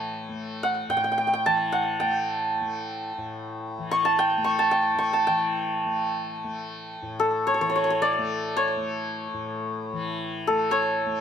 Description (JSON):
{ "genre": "indian classical", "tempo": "110 BPM", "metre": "3/4", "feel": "straight", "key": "unclear", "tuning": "A4 = 440 Hz", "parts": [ { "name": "santur", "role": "melody", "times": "0.0-11.2 s", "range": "A4 to C#6", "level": "-24 LUFS", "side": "equal", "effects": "slapback echo" }, { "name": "tanpura", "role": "drone", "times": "0.0-11.2 s", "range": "A2 to A3", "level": "-33 LUFS", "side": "left 3 dB", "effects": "none" } ], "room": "light reverb", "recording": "close, detailed microphones", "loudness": "-23 LUFS", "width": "side -8 dB against mid", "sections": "0.0-5.3 A section; 5.3-11.2 B section", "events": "none", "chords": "none", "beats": "| 0.33 0.88 1.43 | 1.98 2.53 3.08 | 3.63 4.18 4.73 | 5.28 5.82 6.37 | 6.92 7.46 8.01 | 8.55 9.10 9.64 | 10.19 10.73" }